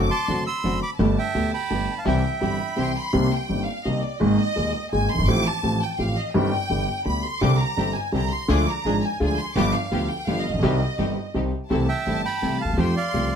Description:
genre	tango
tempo	168 BPM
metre	3/4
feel	rubato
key	C major, C minor from 3.1 s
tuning	A4 = 437 Hz
part	rich studio violin section	second line	0.0-13.4 s	D5 to D6	-28 LUFS	equal	slapback echo
part	warm concert grand piano	accompaniment	0.0-13.3 s	Eb1 to Ab4	-24 LUFS	equal	none
part	rich chamber string section	stabs	0.0-2.9, 7.4-13.3 s	A3 to A4	-32 LUFS	left 1 dB	none
part	upright bass	bass	0.0-13.3 s	F#1 to F2	-26 LUFS	right 1 dB	none
part	bandoneon	melody	0.1-2.9, 11.9-13.4 s	C5 to E6	-26 LUFS	right 4 dB	none
room	light reverb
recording	close, detailed microphones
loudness	-21 LUFS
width	side -8 dB against mid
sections	0.0-3.1 A section; 3.1-11.7 B section; 11.7-13.4 A section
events	violin section solo 3.1-11.7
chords	0.0 D7/F#; 1.0 Gadd9; 2.1 C; 3.1 Cm7; 4.2 Absus2; 5.3 Fadd9/A; 6.3 Cm/G; 6.7 G; 7.4 Csus2; 8.5 Ddim; 9.6 G7; 10.6 Cm; 11.7 C6; 12.8 Fadd9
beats	0.28 0.64 | 0.99 1.35 1.71 | 2.06 2.42 2.78 | 3.14 3.50 3.85 | 4.21 4.57 4.92 | 5.28 5.64 5.99 | 6.35 6.70 7.06 | 7.42 7.78 8.14 | 8.49 8.85 9.21 | 9.56 9.92 10.27 | 10.63 10.99 11.35 | 11.70 12.06 12.42 | 12.78 13.13

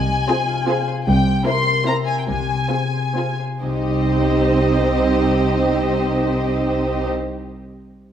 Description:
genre	cinematic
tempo	126-154 BPM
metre	3/4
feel	straight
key	C minor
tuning	A4 = 440 Hz
part	muted studio violin section	melody	0.0-7.1 s	Eb5 to C6	-24 LUFS	left 2 dB	none
part	concert harp	arpeggios	0.0-7.5 s	C3 to F5	-25 LUFS	left 5 dB	none
part	muted chamber cello section	bass	0.0-7.1 s	C2	-24 LUFS	right 1 dB	none
part	muted chamber double bass section	bass	0.0-7.1 s	C2	-24 LUFS	right 2 dB	none
part	muted chamber violin section	second line	0.3-7.1 s	G4 to C5	-24 LUFS	equal	none
part	muted chamber viola section	accompaniment	0.3-7.1 s	C4 to F4	-22 LUFS	right 3 dB	none
room	wet recital hall reverb, RT60 1.6 s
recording	none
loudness	-17 LUFS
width	side -9 dB against mid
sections	0.0-3.6 A section; 3.6-6.5 B section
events	slowing down 0.5-3.6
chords	0.0 Fm/C; 1.1 C7; 2.3 Fm/C; 3.6 Cm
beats	0.28 0.67 | 1.06 1.46 1.86 | 2.28 2.71 3.16 | 3.63 4.09 4.56 | 5.04 5.51 5.98

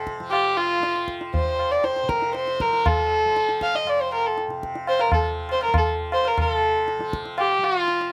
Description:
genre	indian classical, Hindustani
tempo	119 BPM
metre	7/4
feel	straight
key	F raga khamaj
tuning	A4 = 439 Hz
part	dark violin	melody	0.0-8.1 s	F4 to F5	-24 LUFS	equal	none
part	tanpura	drone	0.0-8.1 s	F2 to F3	-36 LUFS	equal	none
part	tabla	percussion	0.1-8.1 s	none	-29 LUFS	equal	none
room	light reverb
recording	none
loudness	-23 LUFS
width	mono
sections	0.0-6.4 A section; 6.4-8.1 B section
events	none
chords	none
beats	0.32 0.83 1.34 1.84 2.35 | 2.86 3.36 3.87 4.37 4.88 5.38 5.88 | 6.39 6.89 7.39 7.89

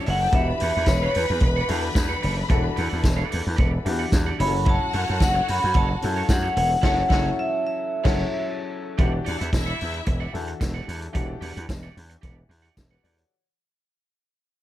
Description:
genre	disco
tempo	111 BPM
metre	4/4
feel	straight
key	E dorian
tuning	A4 = 438 Hz
part	clear studio string section	second line	0.0-10.3 s	D4 to B5	-31 LUFS	left 3 dB	none
part	electric guitar at the edge of break-up	accompaniment	0.0-13.2 s	E4 to F#5	-34 LUFS	right 9 dB	none
part	warm concert grand piano	accompaniment	0.0-13.4 s	E3 to F#5	-31 LUFS	left 4 dB	none
part	vibraphone with hard mallets	melody	0.1-8.4 s	B4 to B5	-25 LUFS	equal	slapback echo
part	gritty slap bass	bass	0.1-13.2 s	E1 to F#2	-26 LUFS	equal	overdrive
part	vintage drum kit	drums	0.1-13.3 s	crash cymbal, hi-hat, kick drum, snare drum	-25 LUFS	equal	none
part	tambourine	percussion	0.9-12.9 s	none	-39 LUFS	left 9 dB	none
room	small room ambience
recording	none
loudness	-20 LUFS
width	side -13 dB against mid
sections	0.0-9.0 A section; 9.0-13.3 B section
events	band accent 6.8-9.0; fade-out 9.0-13.3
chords	0.3 Em9; 4.4 F#m7; 9.0 Em9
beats	| 0.33 0.87 1.41 1.96 | 2.50 3.04 3.58 4.12 | 4.66 5.20 5.74 6.28 | 6.82 7.37 7.91 8.45 | 8.99 9.53 10.07 10.61 | 11.15 11.69 12.23 12.77

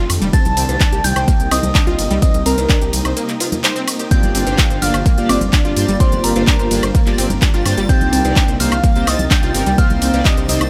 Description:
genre	progressive house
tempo	127 BPM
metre	4/4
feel	straight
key	C dorian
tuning	A4 = 440 Hz
part	shimmering ambient pad	sustained chords	0.0-10.7 s	C3 to F4	-29 LUFS	equal	none
part	unison pluck	arpeggios	0.0-10.7 s	G3 to C5	-26 LUFS	equal	sidechain pumping, dub echo
part	dark detuned saw bass	bass	0.0-10.7 s	F1 to G2	-23 LUFS	equal	sidechain pumping
part	deep house drum kit	drums	0.1-10.7 s	handclaps, hi-hat, ride cymbal, shaker, woodblock	-23 LUFS	equal	sidechain pumping on hats, sidechain pumping on cymbals, sidechain pumping on perc
part	warm velvety synth lead	melody	0.3-10.7 s	Bb4 to A5	-26 LUFS	equal	chorus, sidechain pumping, dub echo
part	soft synth bell	second line	0.3-10.7 s	Bb5 to A6	-29 LUFS	equal	chorus, phaser, sidechain pumping, dub echo
part	electronic kick drum	drums	0.3-10.3 s	none	-17 LUFS	equal	none
part	congas and cowbell	percussion	0.5-10.6 s	none	-30 LUFS	equal	sidechain pumping on perc
part	chorused polysynth	stabs	4.1-10.6 s	Bb3 to F5	-23 LUFS	equal	sidechain pumping, dub echo
part	backwards swelling texture	texture	4.8-10.7 s	A6	-34 LUFS	equal	built-in reverb, sidechain pumping
room	little or no reverb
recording	none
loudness	-15 LUFS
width	mono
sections	0.0-10.7 A section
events	break 3.2-4.1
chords	0.3 Cm7; 4.1 Gm7; 7.9 Cm7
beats	| 0.33 0.81 1.28 1.75 | 2.22 2.69 3.17 3.64 | 4.11 4.58 5.06 5.53 | 6.00 6.47 6.95 7.42 | 7.89 8.37 8.84 9.31 | 9.78 10.25

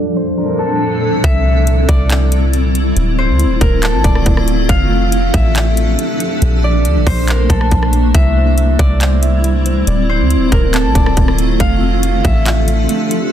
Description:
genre	hip hop, atmospheric cloud-rap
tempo	139 BPM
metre	4/4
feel	half-time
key	F major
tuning	A4 = 441 Hz
part	concert harp	melody	0.0-13.3 s	A4 to F5	-21 LUFS	equal	digital delay
part	granular cloud pad	sustained chords	0.0-13.3 s	Bb2 to A4	-17 LUFS	left 1 dB	built-in reverb, sidechain pumping
part	muted felt-like synth keys	arpeggios	0.0-1.2, 8.1-13.3 s	A3 to F5	-23 LUFS	right 6 dB	chorus, digital delay
part	soft 808-style bass	bass	1.2-12.9 s	D1 to D2	-13 LUFS	equal	none
part	trap drum kit	drums	1.2-13.2 s	handclaps, hi-hat, kick drum, rim click	-17 LUFS	equal	none
room	digital ambience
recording	dense, heavily limited modern master, low-pass filter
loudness	-11 LUFS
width	side -10 dB against mid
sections	0.0-1.2 A section; 1.2-13.3 B section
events	filter sweep 0.0-1.2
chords	0.0 Bbmaj7; 1.2 C; 3.0 Dm7; 4.7 F6; 6.4 Bbmaj7; 8.1 C; 9.9 Dm7; 11.6 F6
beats	0.38 0.81 | 1.24 1.67 2.10 2.54 | 2.97 3.40 3.83 4.26 | 4.69 5.12 5.56 5.99 | 6.42 6.85 7.28 7.71 | 8.15 8.58 9.01 9.44 | 9.87 10.30 10.74 11.17 | 11.60 12.03 12.46 12.89

